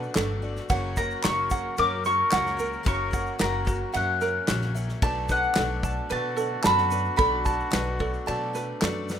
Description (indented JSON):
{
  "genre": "indie folk with a building arrangement",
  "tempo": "111 BPM",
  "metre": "4/4",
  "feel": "straight",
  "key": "unclear",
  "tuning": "A4 = 440 Hz",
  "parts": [
    { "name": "mandolin", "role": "melody", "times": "0.0-8.8 s", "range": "F#5 to D6", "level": "-26 LUFS", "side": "left 1 dB", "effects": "none" },
    { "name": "warm trumpet", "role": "second line", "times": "0.0-8.8 s", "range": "C#4 to A#4", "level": "-36 LUFS", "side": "left 3 dB", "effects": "none" },
    { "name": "clear upright piano", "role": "accompaniment", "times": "0.0-9.2 s", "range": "F#1 to E5", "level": "-38 LUFS", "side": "left 1 dB", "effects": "none" },
    { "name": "picked twelve-string acoustic guitar", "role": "accompaniment", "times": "0.0-9.2 s", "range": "F#2 to F#4", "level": "-39 LUFS", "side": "left 8 dB", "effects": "none" },
    { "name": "muted chamber string section", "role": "sustained chords", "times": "0.0-9.2 s", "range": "C#3 to F#4", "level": "-45 LUFS", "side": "left 2 dB", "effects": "none" },
    { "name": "ukulele", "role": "arpeggios", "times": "0.0-9.2 s", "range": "F#4 to A5", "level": "-31 LUFS", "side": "right 5 dB", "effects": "none" },
    { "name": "upright bass", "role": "bass", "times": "0.0-9.2 s", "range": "F#1 to B2", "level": "-32 LUFS", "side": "equal", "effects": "none" },
    { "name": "egg shaker", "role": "percussion", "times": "0.0-9.2 s", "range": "none", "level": "-46 LUFS", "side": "right 3 dB", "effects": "none" },
    { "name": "natural country drum kit", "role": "drums", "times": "0.2-9.2 s", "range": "kick drum, ride cymbal, snare drum", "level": "-29 LUFS", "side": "equal", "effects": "none" },
    { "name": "group handclap", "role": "percussion", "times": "0.2-8.9 s", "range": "none", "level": "-31 LUFS", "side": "equal", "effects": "none" }
  ],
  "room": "little or no reverb",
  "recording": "rough home demo mix",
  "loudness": "-23 LUFS",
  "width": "side -9 dB against mid",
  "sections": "0.0-9.2 A section",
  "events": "none",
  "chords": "0.0 Bm7; 0.7 F#; 5.0 Bm7",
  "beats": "0.16 | 0.70 1.24 1.78 2.32 | 2.86 3.40 3.94 4.48 | 5.02 5.56 6.10 6.64 | 7.18 7.73 8.27 8.81"
}